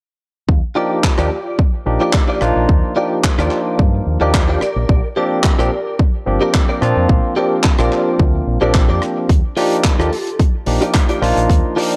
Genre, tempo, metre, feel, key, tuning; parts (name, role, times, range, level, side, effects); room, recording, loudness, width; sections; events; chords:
nu-disco, nu disco; 109 BPM; 4/4; straight; A4 = 439 Hz
fingered electric bass with an envelope filter; bass; 0.5-11.6 s; G1 to Bb2; -21 LUFS; equal
electronic kick drum; drums; 0.5-11.6 s; -17 LUFS; equal; overdrive
barky tine electric piano; accompaniment; 0.8-12.0 s; F3 to G4; -21 LUFS; equal; sidechain pumping, tape echo
direct-recorded clean electric guitar; riff; 0.8-12.0 s; F4 to D5; -23 LUFS; equal; ensemble chorus, tape echo
damped 70s drum kit; drums; 1.0-12.0 s; handclaps, hi-hat, rim click; -25 LUFS; equal
studio reverb; dry, gritty hardware recording; -16 LUFS; mono
0.5-12.0 A section
0.5 Ebmaj9; 4.6 Bb6; 9.3 Ebmaj9